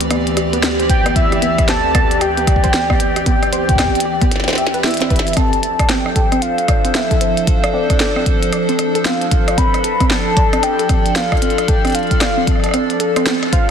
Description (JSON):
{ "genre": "IDM", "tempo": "114 BPM", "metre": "4/4", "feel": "swing 62% on 16ths", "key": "D dorian", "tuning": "A4 = 438 Hz", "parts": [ { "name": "warm velvety synth lead", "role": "melody", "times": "0.0-13.7 s", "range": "B4 to B5", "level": "-20 LUFS", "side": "equal", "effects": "chorus, tremolo, ping-pong delay" }, { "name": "warbly tape-like pad", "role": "sustained chords", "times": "0.0-13.7 s", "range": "D2 to D5", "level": "-19 LUFS", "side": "left 1 dB", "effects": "chorus, built-in reverb, phaser" }, { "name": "glitchy drum kit", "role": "drums", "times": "0.0-13.7 s", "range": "hi-hat, rim click, snare drum", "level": "-21 LUFS", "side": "equal", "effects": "none" }, { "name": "warbly dusty pluck", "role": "arpeggios", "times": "0.1-13.6 s", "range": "B3 to E5", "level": "-22 LUFS", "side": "right 2 dB", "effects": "chorus, cassette tape, tape echo" }, { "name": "electronic kick drum", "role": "drums", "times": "0.9-13.7 s", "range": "none", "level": "-16 LUFS", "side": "equal", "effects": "none" } ], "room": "moderate lush hall reverb, RT60 1.8 s", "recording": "dense, heavily limited modern master", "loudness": "-13 LUFS", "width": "side -7 dB against mid", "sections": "0.0-13.7 A section", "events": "drum fill 4.3-5.4", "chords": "0.0 Cmaj7/D; 5.4 Dm7" }